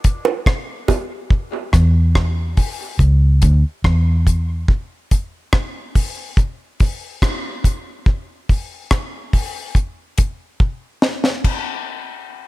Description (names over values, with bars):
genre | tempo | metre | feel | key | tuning
dub reggae | 71 BPM | 4/4 | straight | unclear | A4 = 440 Hz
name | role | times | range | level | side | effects
deep reggae drum kit | drums | 0.0-11.6 s | crash cymbal, hi-hat, kick drum, rim click, snare drum | -17 LUFS | equal | none
bongos | percussion | 0.2-1.1 s | none | -23 LUFS | right 7 dB | dub echo
vintage muted fingered electric bass | bass | 1.7-4.6 s | C#2 to E2 | -13 LUFS | equal | none
room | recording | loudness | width
small room ambience | none | -16 LUFS | side -18 dB against mid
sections
0.0-11.4 A section; 11.4-12.5 B section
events
break 0.0-1.3; drum fill 10.6-11.4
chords
none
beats
0.46 | 1.30 2.15 2.99 3.84 | 4.68 5.53 6.37 7.22 | 8.06 8.91 9.75 10.60 | 11.44